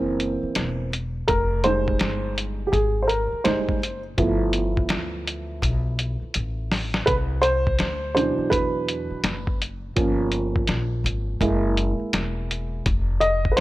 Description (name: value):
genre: hip hop, jazz-hop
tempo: 83 BPM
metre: 4/4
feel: swing 62% on 16ths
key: unclear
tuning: A4 = 442 Hz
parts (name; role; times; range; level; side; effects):
- dark upright piano; accompaniment; 0.0-13.6 s; B2 to Eb5; -23 LUFS; right 1 dB; none
- upright bass; bass; 0.0-13.6 s; E1 to E2; -27 LUFS; equal; none
- lo-fi sampler-style drum kit; drums; 0.2-13.6 s; hi-hat, kick drum, snare drum; -25 LUFS; equal; none
room: light reverb, small room ambience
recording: none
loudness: -21 LUFS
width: side -17 dB against mid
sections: 0.0-13.6 A section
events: upright piano solo 0.0-13.6; drum fill 6.3-7.1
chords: 0.0 F#7#11; 1.3 Fm9; 4.2 G13; 7.1 Cmaj9#11; 10.0 Gm7b5; 11.4 F#9; 12.9 F7(no3)